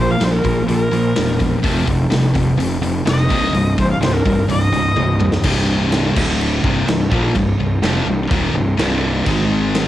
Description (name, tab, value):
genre	hard rock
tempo	126 BPM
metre	4/4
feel	straight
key	C minor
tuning	A4 = 439 Hz
part	rich viola	melody	0.0-5.4 s	Bb4 to F5	-21 LUFS	left 1 dB	none
part	high-gain distorted guitar	riff	0.0-9.9 s	C2 to Bb3	-21 LUFS	left 6 dB	distortion, cassette tape
part	sludgy distorted guitar	riff	0.0-9.9 s	C2 to Bb3	-20 LUFS	right 4 dB	overdrive, cassette tape
part	fuzz fingered electric bass	bass	0.0-9.9 s	C1 to Bb1	-20 LUFS	equal	overdrive
part	huge arena drum kit	drums	0.2-9.9 s	crash cymbal, hi-hat, kick drum, snare drum, toms	-21 LUFS	equal	cassette tape
room	light reverb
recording	home recording on cassette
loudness	-14 LUFS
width	side -13 dB against mid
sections	0.0-5.4 A section; 5.4-9.9 B section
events	viola solo 0.0-5.4; drum fill 5.0-5.4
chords	0.0 Bb5; 1.6 F5; 3.3 C5; 6.2 D5; 6.6 Cm; 9.3 Ab5